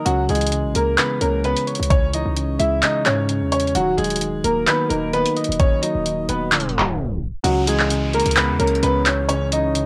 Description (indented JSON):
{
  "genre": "hip hop, trap",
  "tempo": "130 BPM",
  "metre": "4/4",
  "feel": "half-time",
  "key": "unclear",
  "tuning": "A4 = 439 Hz",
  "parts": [
    { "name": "clear grand piano", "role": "melody", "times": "0.0-9.9 s", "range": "Gb3 to Fb5", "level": "-24 LUFS", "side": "equal", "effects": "cassette tape, tape echo" },
    { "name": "soft electric-piano-like synth keys", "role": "accompaniment", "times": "0.0-9.9 s", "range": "Db3 to Eb5", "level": "-26 LUFS", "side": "equal", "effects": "chorus, cassette tape" },
    { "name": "hard-hitting 808-style bass", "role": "bass", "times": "0.1-9.9 s", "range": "Eb1 to Ab2", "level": "-27 LUFS", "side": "equal", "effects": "none" },
    { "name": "trap drum kit", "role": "drums", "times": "0.1-9.9 s", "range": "handclaps, hi-hat, kick drum", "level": "-23 LUFS", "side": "equal", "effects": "cassette tape" },
    { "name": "downlifter", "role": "sound effects", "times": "7.4-9.9 s", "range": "none", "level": "-36 LUFS", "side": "equal", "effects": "none" }
  ],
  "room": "light reverb",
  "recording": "home recording on cassette, tape stop",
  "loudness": "-20 LUFS",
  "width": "mono",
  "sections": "0.0-7.4 A section; 7.4-9.9 B section",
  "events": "tape stop 6.5-7.4",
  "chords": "0.1 Dbm; 3.8 Ebm; 7.4 Dbm"
}